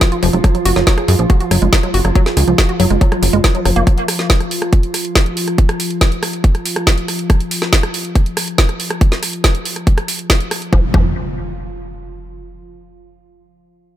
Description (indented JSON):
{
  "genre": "psychedelic trance",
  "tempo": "140 BPM",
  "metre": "4/4",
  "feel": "straight",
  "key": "unclear",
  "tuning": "A4 = 439 Hz",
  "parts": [
    { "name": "evolving wavetable pad", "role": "sustained chords", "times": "0.0-10.8 s", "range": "F3 to F4", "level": "-23 LUFS", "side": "right 1 dB", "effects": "chorus, built-in reverb, sidechain pumping" },
    { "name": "woody wave-folded pluck", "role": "riff", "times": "0.0-3.8, 10.7-11.1 s", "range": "F3 to Ab4", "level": "-19 LUFS", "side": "equal", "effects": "chorus, auto-pan, sidechain pumping, dub echo" },
    { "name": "drum and bass drum kit", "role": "drums", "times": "0.0-10.7 s", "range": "hi-hat, rim click, snare drum", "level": "-18 LUFS", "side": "right 1 dB", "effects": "none" },
    { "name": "electronic kick drum", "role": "drums", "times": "0.0-11.0 s", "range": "none", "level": "-12 LUFS", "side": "equal", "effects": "none" },
    { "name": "downlifter and impact", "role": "sound effects", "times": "0.0-0.4, 10.7-12.4 s", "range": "none", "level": "-26 LUFS", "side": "equal", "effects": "none" },
    { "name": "plucky analog bass", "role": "bass", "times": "0.2-3.8, 10.7-11.1 s", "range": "F1 to Gb2", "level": "-15 LUFS", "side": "equal", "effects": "none" }
  ],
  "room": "little or no reverb",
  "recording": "none",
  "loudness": "-12 LUFS",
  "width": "side -12 dB against mid",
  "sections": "0.0-10.7 A section; 10.7-12.4 B section",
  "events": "filter sweep on ambient pad 0.0-10.7",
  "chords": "0.4 Gb5; 3.9 N.C."
}